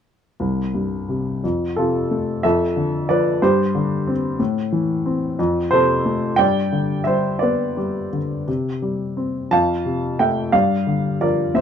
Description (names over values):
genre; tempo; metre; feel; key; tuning
classical, lyrical solo piano; 56-62 BPM (dotted quarters); 6/8; rubato; C major; A4 = 437 Hz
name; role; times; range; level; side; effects
warm baby grand piano; solo; 0.4-11.6 s; C2 to A5; -18 LUFS; equal; none
room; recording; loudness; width
light reverb; dark, warm production; -18 LUFS; side -8 dB against mid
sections
0.4-11.6 A section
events
none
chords
0.4 C5; 1.4 F; 2.4 Dm/F; 3.4 Gsus4; 4.4 Am; 5.4 F; 6.4 G; 8.5 C5; 9.5 F; 10.5 Gm7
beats
| 0.40 1.43 | 2.44 3.42 | 4.39 5.38 | 6.39 7.42 | 8.48 9.52 | 10.53 11.54